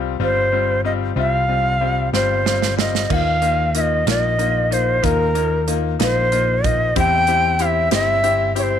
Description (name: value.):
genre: six-eight pop ballad.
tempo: 62 BPM (dotted quarters).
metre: 6/8.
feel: straight.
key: unclear.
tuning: A4 = 440 Hz.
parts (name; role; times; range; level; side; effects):
bright grand piano; accompaniment; 0.0-8.8 s; G3 to G4; -23 LUFS; left 13 dB; none.
mellow fretless electric bass; bass; 0.0-8.8 s; G1 to E2; -22 LUFS; equal; none.
breathy bright shakuhachi; melody; 0.2-8.8 s; Bb4 to G5; -18 LUFS; right 1 dB; none.
modern studio drum kit; drums; 2.1-8.7 s; crash cymbal, hi-hat, kick drum, snare drum; -24 LUFS; right 6 dB; none.
room: light reverb, small room ambience.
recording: 1960s-style stereo with parts hard left and right.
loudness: -16 LUFS.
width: side -9 dB against mid.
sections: 0.0-3.1 A section; 3.1-8.8 B section.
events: drum fill 2.1-3.1.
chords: 0.0 Csus4; 3.1 Ebsus2; 7.0 C.